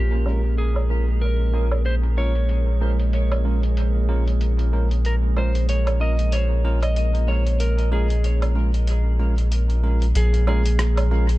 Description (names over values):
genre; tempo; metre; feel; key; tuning
ambient dub; 94 BPM; 4/4; swing 57% on 16ths; Bb minor; A4 = 440 Hz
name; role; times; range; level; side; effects
clean lap steel guitar; melody; 0.0-11.4 s; G4 to Eb5; -30 LUFS; equal; dub echo
warbly tape-like pad; sustained chords; 0.0-11.4 s; Bb3 to Bb4; -35 LUFS; right 2 dB; chorus, built-in reverb
soft dub sub bass; bass; 0.0-11.4 s; Bb1; -19 LUFS; equal; none
drifting glass-harmonics texture; texture; 0.4-10.2 s; Ab3; -34 LUFS; right 9 dB; chorus, built-in reverb
bell-like tine electric piano; stabs; 0.3-11.3 s; Ab3 to Bb4; -32 LUFS; right 4 dB; low-pass filter, dub echo
lo-fi sampler-style drum kit; drums; 0.3-11.4 s; hi-hat, rim click, woodblock; -32 LUFS; right 2 dB; low-pass filter on hats, low-pass filter on perc, low-pass filter on snare, dub echo
room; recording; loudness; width
digital ambience; dark, warm production; -18 LUFS; side -17 dB against mid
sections
0.0-10.2 A section; 10.2-11.4 B section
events
filter sweep on drum 0.0-10.2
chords
0.0 Bbm7